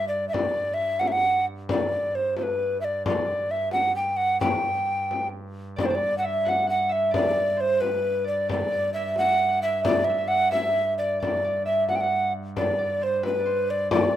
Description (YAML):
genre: medieval dance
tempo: 88 BPM (dotted quarters)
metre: 6/8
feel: straight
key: G major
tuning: A4 = 440 Hz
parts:
  - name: breathy mellow tenor recorder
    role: melody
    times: 0.0-14.2 s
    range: B4 to G5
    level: -23 LUFS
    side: right 1 dB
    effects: none
  - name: pipe organ, foundations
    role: drone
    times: 0.0-14.2 s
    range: G2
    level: -36 LUFS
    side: right 2 dB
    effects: none
  - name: frame drum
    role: percussion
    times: 0.3-14.1 s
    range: none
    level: -28 LUFS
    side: left 4 dB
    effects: none
  - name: concert harp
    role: second line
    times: 5.8-14.2 s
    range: B4 to F#5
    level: -30 LUFS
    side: equal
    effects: none
room: wet studio ambience, RT60 0.5 s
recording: rough home demo mix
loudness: -22 LUFS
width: side -11 dB against mid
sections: 0.0-5.8 A section; 5.8-14.2 A section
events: none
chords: none